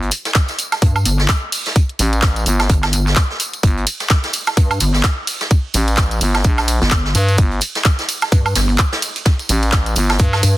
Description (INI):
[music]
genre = bass house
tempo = 128 BPM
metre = 4/4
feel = swing 58% on 16ths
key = G minor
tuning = A4 = 440 Hz
[part]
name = growling FM bass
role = bass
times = 0.0-10.4 s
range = G1 to G2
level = -16 LUFS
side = equal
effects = overdrive, sidechain pumping
[part]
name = vintage brush drum kit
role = drums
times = 0.0-10.6 s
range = hi-hat, snare drum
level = -25 LUFS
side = right 1 dB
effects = sidechain pumping on hats, high-pass filter on hats, soft clipping on snare, high-pass filter on snare, high-pass filter on room
[part]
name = garage drum kit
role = drums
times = 0.1-10.5 s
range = handclaps, hi-hat, ride cymbal, woodblock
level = -20 LUFS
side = right 1 dB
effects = none
[part]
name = tambourine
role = percussion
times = 0.1-10.5 s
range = none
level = -27 LUFS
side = right 1 dB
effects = none
[part]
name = electronic kick drum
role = drums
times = 0.4-10.3 s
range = none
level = -14 LUFS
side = equal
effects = none
[part]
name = pulsing pluck wobble bass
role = bass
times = 0.8-10.6 s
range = G1 to G2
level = -16 LUFS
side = equal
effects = chorus, overdrive, sidechain pumping
[sound]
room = studio ambience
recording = dense, heavily limited modern master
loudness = -14 LUFS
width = side -16 dB against mid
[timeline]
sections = 0.0-10.6 A section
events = none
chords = 0.0 Gsus2